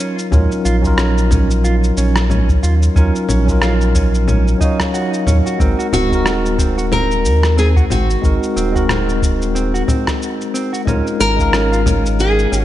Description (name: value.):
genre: sunset chillout.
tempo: 91 BPM.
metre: 4/4.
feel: swing 58% on 16ths.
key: Eb dorian.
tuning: A4 = 440 Hz.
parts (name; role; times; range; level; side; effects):
mellow tine electric piano; accompaniment; 0.0-12.6 s; Gb3 to F5; -19 LUFS; equal; auto-pan, ping-pong delay.
mellow electric guitar; arpeggios; 0.0-12.6 s; C4 to Gb4; -25 LUFS; right 3 dB; ping-pong delay.
electronic shaker, congas and rim click; drums; 0.0-12.6 s; none; -22 LUFS; left 2 dB; none.
warm sub bass; bass; 0.3-12.6 s; Eb1 to Eb2; -16 LUFS; equal; none.
electronic kick drum; drums; 0.3-12.0 s; none; -17 LUFS; equal; none.
nylon-string guitar; melody; 5.9-12.6 s; Gb4 to Bb4; -19 LUFS; equal; digital delay.
room: light reverb, digital ambience.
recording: dark, warm production, nothing above 11.0 kHz.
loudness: -13 LUFS.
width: side -13 dB against mid.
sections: 0.0-12.6 A section.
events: none.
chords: 0.0 Ebm9; 5.6 Ab9; 10.9 Db69.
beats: | 0.32 0.98 1.64 2.30 | 2.96 3.62 4.28 4.94 | 5.60 6.26 6.92 7.58 | 8.23 8.89 9.55 10.21 | 10.87 11.53 12.19.